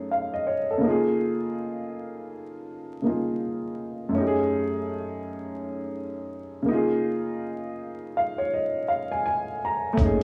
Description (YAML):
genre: lo-fi hip hop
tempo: 82 BPM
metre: 4/4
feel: swing 63% on 16ths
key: Db major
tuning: A4 = 440 Hz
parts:
  - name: dark upright piano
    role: accompaniment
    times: 0.0-10.2 s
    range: Gb2 to Bb5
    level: -28 LUFS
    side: equal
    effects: cassette tape, plate reverb
  - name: upright bass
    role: bass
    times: 10.0-10.2 s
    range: Gb1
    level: -28 LUFS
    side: equal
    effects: none
  - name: dusty soul sampler-style drum kit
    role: drums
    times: 10.0-10.2 s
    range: hi-hat, kick drum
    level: -25 LUFS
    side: equal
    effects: none
room: wet small room reverb, RT60 0.5 s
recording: vinyl crackle, small room ambience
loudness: -27 LUFS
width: mono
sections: 0.0-10.0 A section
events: upright piano fill 7.8-10.0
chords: 0.0 Gbm6; 0.8 Db69; 4.1 Gbm6; 6.7 Db69